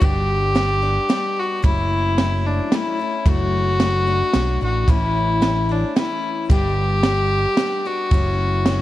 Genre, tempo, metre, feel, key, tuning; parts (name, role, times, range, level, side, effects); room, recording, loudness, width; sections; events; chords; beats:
indie folk with a building arrangement; 111 BPM; 3/4; straight; A4 = 441 Hz
warm fiddle; melody; 0.0-8.8 s; D4 to G4; -21 LUFS; left 1 dB; analog delay
picked steel-string acoustic guitar; accompaniment; 0.0-8.8 s; G2 to G4; -27 LUFS; left 8 dB
fingered electric bass; bass; 0.0-8.8 s; F#1 to B1; -21 LUFS; right 1 dB
compact cocktail drum kit; drums; 0.0-8.8 s; kick drum, ride cymbal, snare drum; -20 LUFS; right 1 dB
studio reverb; dark, warm production; -17 LUFS; side -15 dB against mid
0.0-8.8 A section
0.0 G; 1.6 F#m7; 3.3 D/F#; 4.9 A; 6.5 G; 8.1 F#m7
| 0.02 0.56 1.10 | 1.64 2.18 2.72 | 3.26 3.80 4.34 | 4.88 5.42 5.96 | 6.50 7.04 7.58 | 8.12 8.66